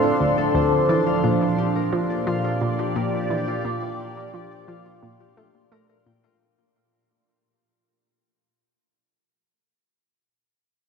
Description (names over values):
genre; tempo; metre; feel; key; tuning
ambient, sequencer-driven space music; 87 BPM; 4/4; straight; unclear; A4 = 439 Hz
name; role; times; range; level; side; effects
phased analog pad; sustained chords; 0.0-6.4 s; Bb2 to D5; -23 LUFS; right 2 dB; phaser, chorus, shimmer reverb
concert harp; arpeggios; 0.0-8.8 s; F4 to G5; -26 LUFS; left 2 dB; auto-pan, ping-pong delay, shimmer reverb
analog pluck; riff; 0.0-6.3 s; D2 to A3; -26 LUFS; equal; chorus, ping-pong delay, shimmer reverb
bubbling stepped-filter texture; texture; 0.0-6.4 s; C6; -34 LUFS; left 1 dB; chorus, built-in reverb, shimmer reverb
room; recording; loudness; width
wet cathedral reverb, RT60 5.2 s; in a vast, echoing space, cassette tape; -20 LUFS; side -6 dB against mid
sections
0.0-6.4 A section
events
fade-out 0.0-6.4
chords
0.0 Dm7; 0.9 Bb6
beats
0.20 | 0.89 1.58 2.27 2.96 | 3.65 4.34 5.03 5.72